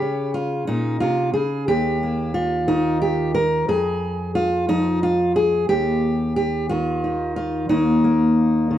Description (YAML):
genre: folk, solo fingerstyle acoustic guitar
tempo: 60 BPM (dotted quarters)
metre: 6/8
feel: straight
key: Eb major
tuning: A4 = 445 Hz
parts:
  - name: fingerpicked steel-string acoustic guitar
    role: solo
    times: 0.0-8.8 s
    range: Eb2 to Bb4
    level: -18 LUFS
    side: equal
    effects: none
room: moderate small room reverb, RT60 0.5 s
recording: worn, warbling old tape, cassette tape, warbly pitch drift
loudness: -18 LUFS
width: side -11 dB against mid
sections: 0.0-8.8 A section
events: none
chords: 0.0 Bbm13; 1.7 Ebadd9; 3.7 N.C.; 7.7 Eb5